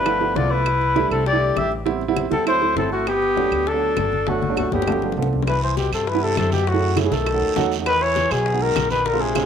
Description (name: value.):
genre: Afro-Cuban jazz.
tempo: 200 BPM.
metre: 4/4.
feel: straight.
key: G major.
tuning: A4 = 440 Hz.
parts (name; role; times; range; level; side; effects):
growling trumpet; melody; 0.0-9.5 s; F#4 to E5; -21 LUFS; left 1 dB; none.
warm tenor saxophone; second line; 0.0-9.5 s; A2 to G4; -29 LUFS; left 11 dB; slapback echo.
upright bass; bass; 0.0-9.4 s; G1 to G2; -26 LUFS; equal; none.
dark baby grand piano; accompaniment; 0.1-9.5 s; F3 to Ab4; -24 LUFS; right 10 dB; none.
bongos; percussion; 0.1-9.5 s; none; -32 LUFS; left 13 dB; none.
claves; percussion; 0.1-9.5 s; none; -32 LUFS; right 13 dB; none.
congas; percussion; 0.1-9.5 s; none; -31 LUFS; left 8 dB; none.
guiro; percussion; 5.5-9.5 s; none; -34 LUFS; right 13 dB; none.
room: moderate spring reverb, RT60 1.4 s, small room ambience.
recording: 1960s-style stereo with parts hard left and right.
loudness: -18 LUFS.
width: side -8 dB against mid.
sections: 0.0-5.5 A section; 5.5-9.5 B section.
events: drum fill 4.3-5.5.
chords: 0.1 G13; 0.7 C6; 1.9 Am7; 2.5 D9; 3.1 Gmaj9; 4.9 G7; 5.5 Cmaj7; 6.7 F#m7; 7.3 B7; 7.9 Emaj7.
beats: 0.06 0.36 | 0.66 0.96 1.26 1.56 | 1.86 2.17 2.47 2.77 | 3.07 3.37 3.67 3.97 | 4.27 4.57 4.87 5.17 | 5.47 5.77 6.07 6.37 | 6.67 6.97 7.27 7.57 | 7.87 8.16 8.46 8.76 | 9.06 9.36.